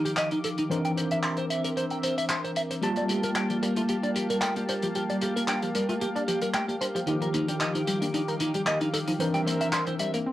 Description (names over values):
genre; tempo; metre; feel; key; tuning
nu-disco, nu disco; 113 BPM; 4/4; swing 53% on 16ths; G minor; A4 = 441 Hz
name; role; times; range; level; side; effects
tine electric piano; accompaniment; 0.0-10.3 s; Eb3 to A5; -31 LUFS; equal; overdrive, medium stereo tremolo, cassette tape, tape echo
lush unison pad; sustained chords; 0.0-10.3 s; Eb3 to D6; -33 LUFS; equal; chorus, cassette tape
clean electric guitar; riff; 0.1-10.2 s; D4 to C6; -30 LUFS; equal; wide subtle chorus, low-pass filter, cassette tape, tape echo
tight funk drum kit; drums; 0.1-10.2 s; handclaps, hi-hat; -32 LUFS; left 1 dB; cassette tape
analog pluck; arpeggios; 2.8-10.3 s; E3 to Eb4; -34 LUFS; left 1 dB; chorus, cassette tape, analog delay
room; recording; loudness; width
wet small room reverb, RT60 0.6 s; home recording on cassette; -25 LUFS; side -14 dB against mid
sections
0.0-10.3 A section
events
none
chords
0.0 Ebmaj9; 0.7 C9; 2.8 Gm9; 7.1 Ebmaj9; 9.2 C9